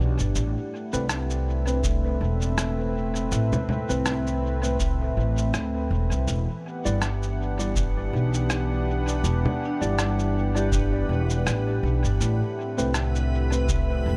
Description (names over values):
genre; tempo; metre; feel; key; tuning
ambient dub; 81 BPM; 4/4; swing 56% on 16ths; unclear; A4 = 440 Hz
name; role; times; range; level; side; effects
warm analog pad; sustained chords; 0.0-14.2 s; A2 to F#5; -32 LUFS; equal; chorus
upright bass; bass; 0.0-14.2 s; E1 to D2; -27 LUFS; equal; none
electronic shaker, rim click and congas; drums; 0.2-13.9 s; none; -33 LUFS; equal; dub echo
tine electric piano; stabs; 0.9-13.7 s; G3 to D5; -35 LUFS; equal; overdrive, dub echo
electronic kick drum; drums; 1.8-13.9 s; none; -30 LUFS; equal; none
backwards swelling texture; texture; 7.8-14.2 s; B4; -41 LUFS; equal; built-in reverb
vibraphone with medium hard mallets; arpeggios; 9.7-14.2 s; D4 to G4; -36 LUFS; equal; dub echo
room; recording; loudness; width
little or no reverb; none; -25 LUFS; mono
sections
0.0-14.2 A section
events
none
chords
0.4 Amadd9; 6.3 Em7; 12.2 Amadd9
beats
| 0.35 1.09 1.84 2.58 | 3.32 4.06 4.80 5.54 | 6.28 7.02 7.76 8.50 | 9.24 9.98 10.72 11.46 | 12.21 12.95 13.69